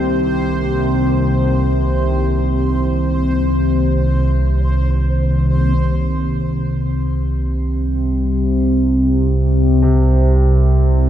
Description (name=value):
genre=dark ambient drone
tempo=free time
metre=none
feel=none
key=C minor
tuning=A4 = 439 Hz
part: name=deep dark ambient pad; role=sustained chords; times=0.0-5.8 s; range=C3 to G4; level=-23 LUFS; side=left 1 dB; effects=chorus, built-in reverb, shimmer reverb
part: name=clear concert grand piano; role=arpeggios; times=0.0-11.1 s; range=G2 to D4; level=-24 LUFS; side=right 2 dB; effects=none
part: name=analog drone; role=drone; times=0.0-11.1 s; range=C2 to C3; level=-14 LUFS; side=equal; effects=chorus, phaser
part: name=bubbling stepped-filter texture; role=texture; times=0.0-5.8 s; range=C5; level=-28 LUFS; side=right 2 dB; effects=chorus, built-in reverb, shimmer reverb
room=wet cathedral reverb, RT60 5.8 s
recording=in a vast, echoing space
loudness=-14 LUFS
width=side -10 dB against mid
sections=0.0-5.8 A section; 5.8-11.1 B section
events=none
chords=0.0 Cmadd9; 5.8 C5